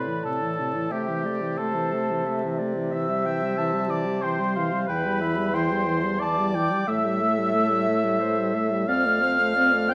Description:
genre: classical, slow romantic movement for wind quintet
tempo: 90 BPM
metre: 3/4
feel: rubato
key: unclear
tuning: A4 = 440 Hz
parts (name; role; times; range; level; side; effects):
- mellow concert flute; melody; 0.0-9.9 s; G5 to G6; -31 LUFS; equal; none
- warm oboe; second line; 0.0-9.9 s; G4 to G5; -31 LUFS; equal; none
- dark French horn; accompaniment; 0.0-9.9 s; C3 to C4; -30 LUFS; equal; none
- mellow clarinet; accompaniment; 0.0-9.9 s; C5 to A5; -34 LUFS; equal; none
- warm bassoon; bass; 0.0-9.9 s; E2 to C3; -31 LUFS; equal; none
room: moderate recital hall reverb, RT60 1.4 s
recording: vinyl crackle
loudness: -24 LUFS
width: mono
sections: 0.0-9.9 A section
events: none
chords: 0.0 Am; 0.9 Am/C; 2.9 C; 4.9 C/E; 6.9 A5; 8.9 F

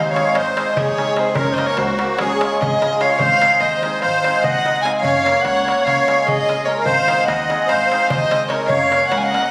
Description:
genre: balkan folk, Balkan wedding band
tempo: 294 BPM (eighths)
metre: 9/8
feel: straight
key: Ab mixolydian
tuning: A4 = 441 Hz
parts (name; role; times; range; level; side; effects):
- dark violin; melody; 0.0-9.5 s; C5 to Ab5; -21 LUFS; equal; none
- musette accordion; second line; 0.0-9.5 s; Gb4 to F5; -22 LUFS; equal; none
- cimbalom; accompaniment; 0.0-9.5 s; Ab3 to Bb4; -25 LUFS; equal; none
- upright bass; bass; 0.0-9.4 s; Gb1 to Eb2; -32 LUFS; equal; none
- darbuka; percussion; 0.1-9.4 s; none; -28 LUFS; equal; none
room: wet recital hall reverb, RT60 1.5 s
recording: recorded on a phone in the room, studio reverb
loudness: -17 LUFS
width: mono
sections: 0.0-9.5 A section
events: none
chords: 0.0 Ab; 1.4 Gb; 2.2 Db; 3.2 Ab; 5.0 Gb; 5.8 Db; 6.9 Ab; 8.7 Gb

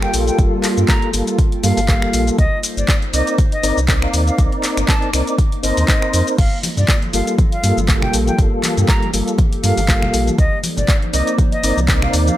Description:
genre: deep house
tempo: 120 BPM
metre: 4/4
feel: swing 56% on 16ths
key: G minor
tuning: A4 = 438 Hz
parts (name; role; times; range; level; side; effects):
- reedy concert flute; melody; 0.0-12.4 s; D5 to Bb5; -24 LUFS; equal; tape echo
- warbly tape-like pad; sustained chords; 0.0-12.4 s; G3 to D6; -26 LUFS; left 1 dB; chorus, built-in reverb, sidechain pumping
- mellow tonewheel organ; stabs; 0.0-12.4 s; G3 to D5; -21 LUFS; equal; chorus vibrato, slow rotary speaker, sidechain pumping
- sub bass with octave; bass; 0.0-12.3 s; G1 to G2; -18 LUFS; equal; tube saturation
- punchy analog drum machine; drums; 0.0-12.4 s; crash cymbal, finger snaps, handclaps, hi-hat, shaker; -22 LUFS; left 1 dB; none
- electronic kick drum; drums; 0.4-12.0 s; none; -16 LUFS; equal; none
- congas; percussion; 6.6-12.4 s; none; -28 LUFS; equal; none
room: little or no reverb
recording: none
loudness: -14 LUFS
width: side -14 dB against mid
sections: 0.0-12.4 A section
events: none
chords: 0.0 Gm9; 2.4 Cm9; 6.4 Gm9; 10.4 Cm9

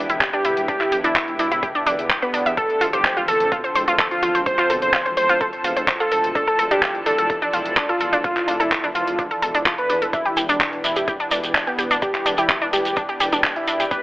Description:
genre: melodic techno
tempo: 127 BPM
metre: 4/4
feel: straight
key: E phrygian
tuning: A4 = 440 Hz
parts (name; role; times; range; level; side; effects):
- lush unison pad; sustained chords; 0.0-14.0 s; D3 to A4; -28 LUFS; equal; chorus, sidechain pumping
- wide unison pluck; arpeggios; 0.0-14.0 s; D4 to G6; -22 LUFS; equal; sidechain pumping, digital delay
- swelling detuned saw bass; bass; 0.0-14.0 s; D1 to E2; -35 LUFS; equal; sidechain pumping
- deep house drum kit; drums; 0.1-14.0 s; handclaps, hi-hat; -22 LUFS; equal; overdrive, sidechain pumping on hats, sidechain pumping on cymbals
- electronic kick drum; drums; 0.2-14.0 s; none; -28 LUFS; equal; overdrive
- wide unison lead; melody; 0.3-14.0 s; B3 to C5; -22 LUFS; equal; sidechain pumping, digital delay
- shekere; percussion; 10.1-14.0 s; none; -26 LUFS; right 1 dB; none
room: light reverb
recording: telephone sound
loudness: -17 LUFS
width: side -18 dB against mid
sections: 0.0-14.0 A section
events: none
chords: 0.0 Em7; 2.6 F; 6.4 Dm; 10.1 Em7

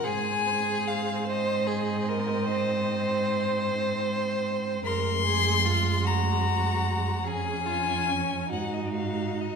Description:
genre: classical, slow romantic movement for string quartet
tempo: 50 BPM (dotted quarters)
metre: 12/8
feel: rubato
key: unclear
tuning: A4 = 440 Hz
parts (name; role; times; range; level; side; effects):
- rich violin; melody; 0.0-9.6 s; Eb5 to C6; -29 LUFS; left 7 dB; none
- rich violin; second line; 0.0-9.6 s; Db4 to C5; -30 LUFS; equal; none
- rich cello; bass; 0.0-9.6 s; F2 to Ab2; -29 LUFS; right 4 dB; none
- rich viola; accompaniment; 0.1-9.6 s; Ab3 to Gb4; -35 LUFS; right 5 dB; none
room: wet concert hall reverb, RT60 1.8 s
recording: minimal, uncompressed stereo recording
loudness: -24 LUFS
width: side -6 dB against mid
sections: 0.0-9.6 A section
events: none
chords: 0.0 Ab; 4.9 Ab7/Gb; 7.3 Db/F; 8.5 Ab5

